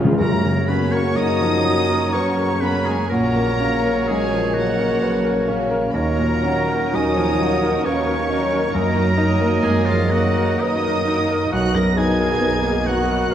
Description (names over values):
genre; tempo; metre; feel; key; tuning
classical, romantic movement for piano and orchestra; 64 BPM; 3/4; uneven beats, rubato; F# major; A4 = 441 Hz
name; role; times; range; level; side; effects
warm concert grand piano; melody; 0.0-13.3 s; B1 to B4; -22 LUFS; left 1 dB; none
muted chamber viola section; accompaniment; 0.0-13.3 s; F#3 to E#4; -28 LUFS; equal; none
muted chamber cello section; bass; 0.0-13.3 s; E#3 to A#4; -27 LUFS; right 2 dB; none
muted chamber double bass section; bass; 0.0-13.2 s; A#1 to F#2; -26 LUFS; right 3 dB; none
muted chamber violin section; melody; 0.2-13.3 s; E#5 to A#6; -29 LUFS; left 3 dB; none
bright oboe; second line; 0.2-13.3 s; E#4 to A#5; -27 LUFS; right 2 dB; none
dark French horn section; sustained chords; 0.2-13.3 s; A#3 to A#4; -27 LUFS; left 4 dB; none
warm trombone section; sustained chords; 0.2-13.3 s; B2 to F#3; -30 LUFS; right 3 dB; none
clear trumpet; stabs; 0.2-13.3 s; C#5 to D#5; -28 LUFS; right 2 dB; none
muted chamber violin section; second line; 0.7-13.3 s; D#4 to A#4; -32 LUFS; left 2 dB; none
mellow hollow concert flute; second line; 1.2-13.3 s; B4 to A#5; -29 LUFS; left 1 dB; none
room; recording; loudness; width
wet concert hall reverb, RT60 1.9 s; none; -17 LUFS; side -10 dB against mid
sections
0.2-13.3 A section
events
none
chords
0.2 F#; 3.1 F#/A#; 5.9 D#m7; 8.7 D#m/F#; 11.5 Bmaj7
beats
| 0.19 1.16 2.12 | 3.09 4.06 5.00 | 5.92 6.92 7.84 | 8.74 9.62 10.60 | 11.52 12.41 13.32